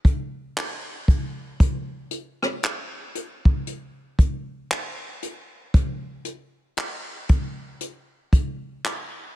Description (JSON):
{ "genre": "R&B", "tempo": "58 BPM", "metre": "4/4", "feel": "swing 58% on 16ths", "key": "none", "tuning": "none", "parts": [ { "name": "jazz brush drum kit", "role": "drums", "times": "0.0-9.1 s", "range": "handclaps, hi-hat, kick drum, rim click", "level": "-21 LUFS", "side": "equal", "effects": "vintage 12-bit sampler grit, soft clipping on snare" } ], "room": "little or no reverb", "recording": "dense, heavily limited modern master", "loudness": "-23 LUFS", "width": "side -15 dB against mid", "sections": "0.0-9.4 A section", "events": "none", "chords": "none" }